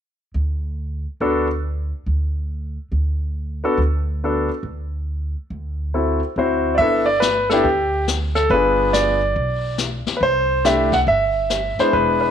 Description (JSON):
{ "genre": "jazz piano trio", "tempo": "140 BPM", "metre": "4/4", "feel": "swing 66% on 8ths", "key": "G major", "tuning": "A4 = 440 Hz", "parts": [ { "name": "upright bass", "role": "bass", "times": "0.3-12.3 s", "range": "E1 to D2", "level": "-24 LUFS", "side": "right 1 dB", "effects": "none" }, { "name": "clear grand piano", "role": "melody", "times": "1.2-12.3 s", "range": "Ab3 to F#5", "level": "-17 LUFS", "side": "equal", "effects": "none" }, { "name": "jazz brush drum kit", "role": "drums", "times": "6.8-12.3 s", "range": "brushed snare drum, hi-hat, kick drum, snare drum", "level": "-26 LUFS", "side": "left 6 dB", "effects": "none" } ], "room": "moderate plate reverb, RT60 1.1 s, small room ambience", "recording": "1960s-style stereo", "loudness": "-18 LUFS", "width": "side -8 dB against mid", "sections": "0.0-6.8 A section; 6.8-12.3 B section", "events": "none", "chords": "0.0 N.C.; 3.4 D6; 6.8 G6; 8.5 G7b9; 10.2 C" }